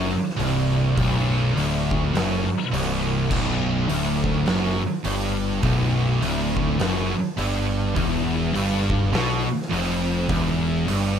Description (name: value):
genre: stoner and doom metal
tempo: 103 BPM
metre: 4/4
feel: swing 60% on 8ths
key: B minor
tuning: A4 = 438 Hz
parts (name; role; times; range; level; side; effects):
- thick fuzz guitar; riff; 0.0-11.2 s; B1 to B2; -25 LUFS; left 7 dB; distortion
- thick fuzz guitar; riff; 0.0-11.2 s; B1 to B2; -26 LUFS; right 6 dB; distortion
- tight distorted guitar; riff; 0.0-11.2 s; B1 to B2; -27 LUFS; right 2 dB; distortion
- overdriven picked electric bass; bass; 0.0-11.2 s; B0 to B1; -28 LUFS; equal; none
- oversized low-tuned drum kit; drums; 0.3-11.0 s; crash cymbal, hi-hat, kick drum, snare drum; -29 LUFS; equal; none
room: light reverb, studio ambience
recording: none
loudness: -20 LUFS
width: side -8 dB against mid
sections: 0.0-11.2 A section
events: none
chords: 0.0 Bm; 8.0 E5